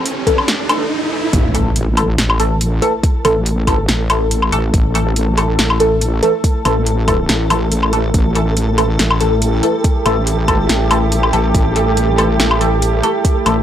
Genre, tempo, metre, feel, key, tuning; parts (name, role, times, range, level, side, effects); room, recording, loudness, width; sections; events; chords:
deep dubstep; 141 BPM; 4/4; swing 53% on 16ths, half-time; A4 = 444 Hz
deep dark ambient pad; sustained chords; 0.0-13.6 s; A3 to A4; -22 LUFS; right 1 dB; chorus, built-in reverb
riser and impact; sound effects; 0.0-3.0 s; -21 LUFS; right 2 dB
deep house drum kit; drums; 0.1-13.6 s; hi-hat, snare drum, woodblock; -18 LUFS; left 1 dB; overdrive
filtered dub chord stab; stabs; 0.3-13.6 s; E3 to A4; -18 LUFS; equal; phaser, wide subtle chorus, dub echo
electronic kick drum; drums; 0.3-13.3 s; -15 LUFS; equal
wobble bass; bass; 1.3-13.6 s; A1; -16 LUFS; equal; chorus
flickering grainy texture; texture; 1.9-13.6 s; A4; -25 LUFS; right 1 dB; built-in reverb
digital ambience; dry, gritty hardware recording, faint mains hum; -12 LUFS; side -10 dB against mid
0.0-1.3 A section; 1.3-13.6 B section
build-up 0.0-1.3; riser 0.0-1.3; filter sweep on synth stab 0.0-1.3; stop 0.9-1.3; drop 1.3-13.6; impact 1.3-3.0
0.0 A5